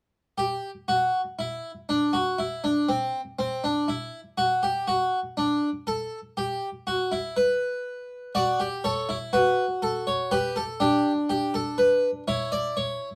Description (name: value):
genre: classical, baroque-style 3-part fugue for harpsichord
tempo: 61 BPM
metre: 4/4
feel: straight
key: G major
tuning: A4 = 440 Hz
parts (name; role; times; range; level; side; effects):
- harpsichord; solo; 0.4-13.2 s; C4 to D5; -26 LUFS; equal; none
room: light reverb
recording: dark, warm production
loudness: -26 LUFS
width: mono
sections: 0.4-13.2 A section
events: none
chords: 0.4 N.C.; 8.3 D; 10.3 G; 12.3 A/E (rootless)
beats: | 0.38 1.39 2.39 3.38 | 4.37 5.36 6.36 7.36 | 8.35 9.33 10.32 11.30 | 12.28